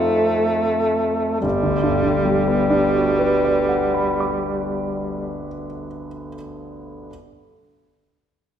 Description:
classical, impressionist duo for alto saxophone and grand piano; 32-36 BPM (dotted quarters); 6/8; rubato; G major; A4 = 440 Hz
warm alto saxophone; melody; 0.0-5.4 s; G3 to A3; -20 LUFS; equal
warm concert grand piano; accompaniment; 0.0-7.1 s; G1 to D6; -21 LUFS; right 1 dB
wet recital hall reverb, RT60 1.7 s; minimal, uncompressed stereo recording; -17 LUFS; side -9 dB against mid
0.0-1.4 A section; 1.4-4.9 B section
slowing down 0.0-1.4
0.0 F7; 1.4 Gmaj7
| 1.43 3.19

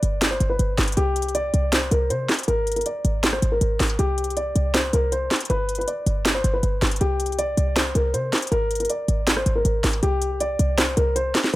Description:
hip hop, trap; 159 BPM; 4/4; half-time; A4 = 441 Hz
dark concert grand piano; melody; 0.0-11.6 s; G4 to D5; -24 LUFS; left 1 dB; low-pass filter, tape echo
short 808-style bass; bass; 0.0-11.3 s; G1 to C3; -23 LUFS; equal
trap drum kit; drums; 0.0-11.6 s; handclaps, hi-hat, rim click, snare drum; -23 LUFS; equal
little or no reverb; -20 LUFS; side -17 dB against mid
0.0-10.0 A section; 10.0-11.6 B section
0.0 G; 1.0 C5; 2.5 Absus2; 4.0 C5; 5.5 G; 7.0 C5; 8.5 Absus2; 10.0 C5
0.22 0.59 | 0.97 1.35 1.73 2.10 | 2.48 2.86 3.23 3.61 | 3.99 4.37 4.74 5.12 | 5.50 5.88 6.25 6.63 | 7.01 7.39 7.76 8.14 | 8.52 8.89 9.27 9.65 | 10.03 10.40 10.78 11.16 | 11.54

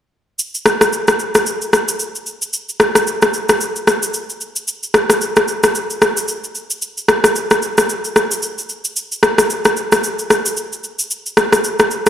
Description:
afrobeats; 112 BPM; 4/4; swing 58% on 16ths
electronic shaker and rim click; drums; 0.4-12.1 s; -14 LUFS; equal
wet plate reverb, RT60 1.9 s, digital ambience; played on a big sound system in a bare room, large studio reverb; -14 LUFS; side -10 dB against mid
0.4-12.1 A section
kick muted 0.4-9.0
| 0.39 0.93 1.46 2.00 | 2.53 3.07 3.60 4.14 | 4.68 5.21 5.75 6.28 | 6.82 7.35 7.89 8.43 | 8.96 9.50 10.03 10.57 | 11.10 11.64

